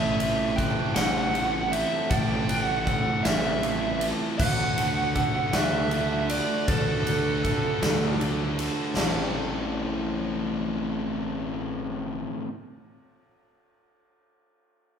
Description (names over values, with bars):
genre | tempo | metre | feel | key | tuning
post-rock | 52 BPM (dotted quarters) | 6/8 | straight | A dorian | A4 = 440 Hz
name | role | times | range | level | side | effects
biting lead guitar | melody | 0.0-8.2 s | A4 to G5 | -28 LUFS | right 2 dB | overdrive, digital delay
glockenspiel with brass mallets | arpeggios | 0.0-9.4 s | A5 to G7 | -37 LUFS | right 3 dB | none
sludgy distorted guitar | riff | 0.0-12.5 s | A2 to A4 | -32 LUFS | left 4 dB | overdrive
sludgy distorted guitar | riff | 0.0-12.5 s | A2 to A4 | -33 LUFS | right 6 dB | overdrive
fuzz fingered electric bass | bass | 0.0-12.3 s | A1 to D2 | -32 LUFS | equal | overdrive
huge arena drum kit | drums | 0.2-9.1 s | crash cymbal, kick drum, ride cymbal, snare drum | -28 LUFS | left 1 dB | none
room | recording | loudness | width
moderate large studio reverb, RT60 1.4 s | band playing live in one room | -23 LUFS | side -7 dB against mid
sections
0.0-9.0 A section; 9.0-11.3 B section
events
none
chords
0.0 Am7; 4.4 D; 9.0 Am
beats
0.96 | 2.11 3.25 | 4.39 5.54 | 6.68 7.83 | 8.98 10.12